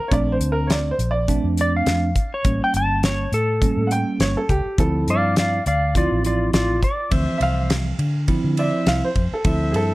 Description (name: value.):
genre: straight-eighth soul blues.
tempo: 103 BPM.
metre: 4/4.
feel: swing 55% on 16ths.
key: D minor.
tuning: A4 = 438 Hz.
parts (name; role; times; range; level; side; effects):
clean lap steel guitar; melody; 0.0-7.1 s; F4 to A5; -22 LUFS; equal; none.
clear upright piano; second line; 0.0-9.9 s; G4 to G5; -25 LUFS; right 1 dB; none.
tine electric piano; accompaniment; 0.1-9.9 s; E3 to E4; -24 LUFS; right 3 dB; phaser.
vintage muted fingered electric bass; bass; 0.1-9.9 s; G1 to D3; -22 LUFS; equal; none.
damped 70s drum kit; drums; 0.1-9.9 s; hi-hat, kick drum, ride cymbal, snare drum; -22 LUFS; equal; none.
bright horn section; sustained chords; 7.1-9.9 s; C5 to E5; -29 LUFS; left 2 dB; none.
room: small room reverb.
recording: none.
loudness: -18 LUFS.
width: side -19 dB against mid.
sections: 0.0-7.1 A section; 7.1-9.9 B section.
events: upright piano solo 7.1-9.9.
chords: 0.0 Bbmaj7; 2.4 A7b9; 4.8 Dm9.